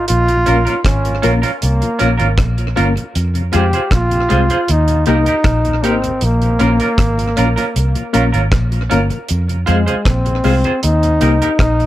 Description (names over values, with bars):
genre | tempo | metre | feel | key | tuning
roots reggae | 78 BPM | 4/4 | straight | unclear | A4 = 440 Hz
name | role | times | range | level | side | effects
clear trombone | melody | 0.0-11.9 s | Ab3 to G4 | -18 LUFS | equal | tape echo
vintage muted fingered electric bass | bass | 0.0-11.9 s | G1 to F2 | -16 LUFS | equal | none
deep reggae drum kit | drums | 0.1-11.9 s | hi-hat, kick drum, rim click | -18 LUFS | equal | tape echo
mellow tonewheel organ | accompaniment | 0.3-11.9 s | Eb2 to G4 | -26 LUFS | left 2 dB | slow rotary speaker
electric guitar through a small old amp | accompaniment | 0.5-11.5 s | Db4 to C5 | -21 LUFS | right 4 dB | tape echo
reed electric piano | stabs | 0.5-11.4 s | Ab3 to Bb4 | -20 LUFS | left 5 dB | fast tremolo
room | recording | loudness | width
light reverb | none | -12 LUFS | side -14 dB against mid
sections
0.0-11.9 A section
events
none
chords
0.1 Bbm; 3.2 Fm; 4.7 Eb; 6.2 Bbm; 9.3 Fm; 10.8 Eb